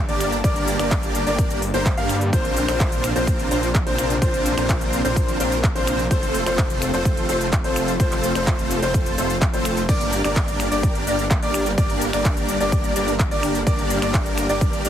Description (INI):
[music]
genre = EDM, festival progressive house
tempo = 127 BPM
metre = 4/4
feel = straight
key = G minor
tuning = A4 = 439 Hz
[part]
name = lush unison pad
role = sustained chords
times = 0.1-14.9 s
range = C3 to A5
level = -29 LUFS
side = equal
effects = chorus, sidechain pumping
[part]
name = detuned saw bass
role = bass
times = 0.0-14.9 s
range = F1 to G2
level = -28 LUFS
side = equal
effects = sidechain pumping
[part]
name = dark grand piano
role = arpeggios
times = 0.1-14.9 s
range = C5 to F5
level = -26 LUFS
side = left 2 dB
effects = sidechain pumping, ping-pong delay
[part]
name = supersaw chords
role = riff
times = 0.1-14.9 s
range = A3 to F5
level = -24 LUFS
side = right 1 dB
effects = ensemble chorus, sidechain pumping, ping-pong delay
[part]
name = big-room dance drum kit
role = drums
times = 0.1-14.9 s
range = crash cymbal, finger snaps, handclaps, hi-hat, shaker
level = -29 LUFS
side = equal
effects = overdrive
[part]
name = electronic kick drum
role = drums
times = 0.4-14.7 s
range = none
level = -21 LUFS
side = equal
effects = overdrive
[sound]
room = little or no reverb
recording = heavily compressed radio sound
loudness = -18 LUFS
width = side -10 dB against mid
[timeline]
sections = 0.0-14.9 A section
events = none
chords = 0.0 Gm; 2.3 Bbadd9; 6.1 F; 9.9 Gm